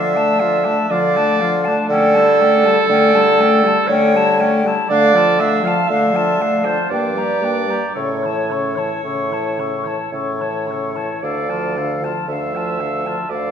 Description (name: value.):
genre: classical, slow romantic movement for wind quintet.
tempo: 54-61 BPM.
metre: 3/4.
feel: rubato.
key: D minor.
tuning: A4 = 440 Hz.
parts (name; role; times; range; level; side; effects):
hollow concert flute; melody; 0.0-13.5 s; F5 to C#6; -22 LUFS; left 6 dB; none.
warm oboe; second line; 0.0-13.5 s; C#4 to C#5; -28 LUFS; left 3 dB; none.
clear clarinet; accompaniment; 0.0-13.5 s; A4 to F5; -20 LUFS; right 4 dB; none.
warm French horn; accompaniment; 0.0-13.5 s; C#3 to Bb3; -23 LUFS; left 1 dB; none.
clear bassoon; bass; 0.0-13.5 s; D2 to D3; -18 LUFS; equal; none.
room: wet recital hall reverb, RT60 1.5 s.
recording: heard from further back in the room.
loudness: -14 LUFS.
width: side -8 dB against mid.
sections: 0.0-13.5 A section.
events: none.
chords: 0.0 Dm; 1.9 A7/D; 4.9 Dm; 6.9 Gm; 8.0 A; 11.2 Dm.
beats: 0.90 | 1.90 2.90 3.90 | 4.90 5.90 6.91 | 7.96 9.04 10.12 | 11.22 12.28 13.29.